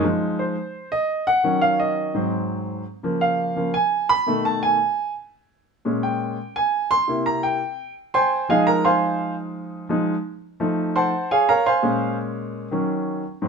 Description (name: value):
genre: jazz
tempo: 170 BPM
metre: 4/4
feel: straight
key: F minor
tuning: A4 = 439 Hz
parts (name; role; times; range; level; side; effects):
- warm grand piano; solo; 0.0-13.5 s; Ab2 to C6; -20 LUFS; right 1 dB; none
room: moderate studio reverb, RT60 1.0 s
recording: minimal, uncompressed stereo recording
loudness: -20 LUFS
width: side -5 dB against mid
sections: 0.0-11.3 A section; 11.3-13.5 A section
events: grand piano solo 0.0-13.5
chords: 0.0 Fm7; 1.4 Ebm7; 2.2 Ab7; 2.9 Db6; 4.3 B6; 5.7 Bbm7; 7.1 C7b13; 8.5 Fm7; 10.6 F7b9; 11.3 Bbm9; 12.7 Ebm7